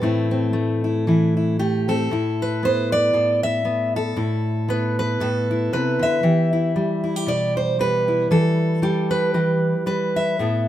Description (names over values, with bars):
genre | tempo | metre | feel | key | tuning
folk, solo fingerstyle acoustic guitar | 116 BPM | 4/4 | swing 56% on 8ths | A minor | A4 = 440 Hz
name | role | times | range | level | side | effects
fingerpicked steel-string acoustic guitar | solo | 0.0-10.7 s | A2 to E5 | -18 LUFS | equal | none
room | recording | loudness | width
moderate studio reverb, RT60 0.8 s | minimal, uncompressed stereo recording | -18 LUFS | side -12 dB against mid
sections
0.0-2.1 A section; 2.1-10.7 A section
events
none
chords
0.0 Am; 2.1 Asus2; 6.2 Em